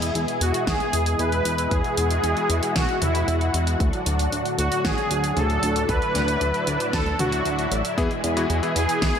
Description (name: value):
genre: synthwave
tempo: 115 BPM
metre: 4/4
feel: straight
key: E mixolydian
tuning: A4 = 440 Hz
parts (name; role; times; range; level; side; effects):
- analog string pad; sustained chords; 0.0-9.2 s; A2 to G#4; -26 LUFS; left 1 dB; ensemble chorus, sidechain pumping
- chorused synth bass; bass; 0.0-9.1 s; A1 to E2; -25 LUFS; equal; none
- pop drum kit; drums; 0.0-9.2 s; hi-hat, snare drum, toms; -29 LUFS; equal; gated reverb
- soft supersaw; melody; 0.4-9.2 s; E4 to B4; -25 LUFS; equal; cassette tape, tape echo
- electronic kick drum; drums; 0.7-9.1 s; none; -26 LUFS; equal; none
- clear electric grand piano; stabs; 8.0-9.2 s; E3 to G#4; -27 LUFS; left 3 dB; none
room: moderate concert hall reverb, RT60 1.8 s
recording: none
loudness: -20 LUFS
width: side -8 dB against mid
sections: 0.0-9.2 A section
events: none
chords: 0.0 E; 3.8 D; 8.0 E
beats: 0.15 0.67 1.19 | 1.72 2.24 2.76 3.28 | 3.80 4.33 4.85 5.37 | 5.89 6.41 6.93 7.46 | 7.98 8.50 9.02